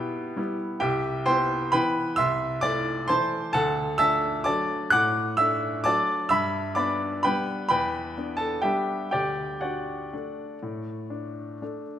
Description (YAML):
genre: classical, piano waltz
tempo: 117-138 BPM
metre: 3/4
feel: rubato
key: unclear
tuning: A4 = 438 Hz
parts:
  - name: clear baby grand piano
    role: solo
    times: 0.0-12.0 s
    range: C2 to F#6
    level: -24 LUFS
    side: equal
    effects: none
room: moderate recital hall reverb, RT60 1.6 s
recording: none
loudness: -23 LUFS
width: side -10 dB against mid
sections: 0.0-12.0 A section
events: none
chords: 0.0 Em; 0.8 Cmaj7; 2.2 Am/C; 3.6 D; 6.3 G; 7.7 Em7; 9.1 D